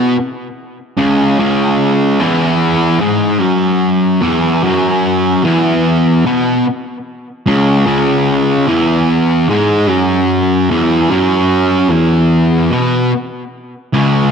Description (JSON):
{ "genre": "metal", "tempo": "74 BPM", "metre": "4/4", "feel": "straight", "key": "C# minor", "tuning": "A4 = 441 Hz", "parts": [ { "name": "fuzz guitar", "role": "solo", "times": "0.0-14.3 s", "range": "C#2 to B3", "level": "-11 LUFS", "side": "equal", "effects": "distortion, analog delay" } ], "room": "wet large studio reverb, RT60 0.9 s, digital ambience", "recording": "dark, warm production", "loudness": "-11 LUFS", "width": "side -6 dB against mid", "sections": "0.0-14.3 A section", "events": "none", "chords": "0.0 C#m" }